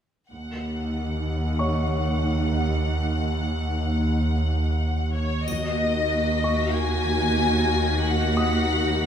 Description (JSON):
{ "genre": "cinematic, suspense film score", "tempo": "93 BPM", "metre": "4/4", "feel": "straight", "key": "Eb minor", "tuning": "A4 = 440 Hz", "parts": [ { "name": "clear symphonic violin section", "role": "melody", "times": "0.3-9.1 s", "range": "Db5 to Ab5", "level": "-28 LUFS", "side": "left 3 dB", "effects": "none" }, { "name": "rich symphonic cello section", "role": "bass", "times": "0.3-9.1 s", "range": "Eb2", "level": "-28 LUFS", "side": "right 2 dB", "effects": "none" }, { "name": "rich symphonic double bass section", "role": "bass", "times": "0.3-6.1 s", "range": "Eb2", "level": "-28 LUFS", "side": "right 2 dB", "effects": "none" }, { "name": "analog drone", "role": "drone", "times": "0.8-9.1 s", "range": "Eb2", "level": "-27 LUFS", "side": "left 1 dB", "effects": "chorus" }, { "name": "clear baby grand piano", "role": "texture", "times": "1.6-9.1 s", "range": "Db5 to Eb6", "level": "-35 LUFS", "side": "left 1 dB", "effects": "none" }, { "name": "rich symphonic viola section", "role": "accompaniment", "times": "5.5-9.1 s", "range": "Bb3 to Gb4", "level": "-28 LUFS", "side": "right 1 dB", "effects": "none" }, { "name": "triangle", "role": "percussion", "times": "5.5-6.7 s", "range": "none", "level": "-41 LUFS", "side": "left 2 dB", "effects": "none" }, { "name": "clear symphonic violin section", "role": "texture", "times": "5.5-9.1 s", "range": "Bb6 to Cb7", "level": "-35 LUFS", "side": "left 3 dB", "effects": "none" } ], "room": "wet scoring stage reverb, RT60 1.7 s", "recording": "minimal, uncompressed stereo recording", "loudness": "-21 LUFS", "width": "side -8 dB against mid", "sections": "0.3-5.5 A section; 5.5-9.1 B section", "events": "none", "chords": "0.3 Ebm" }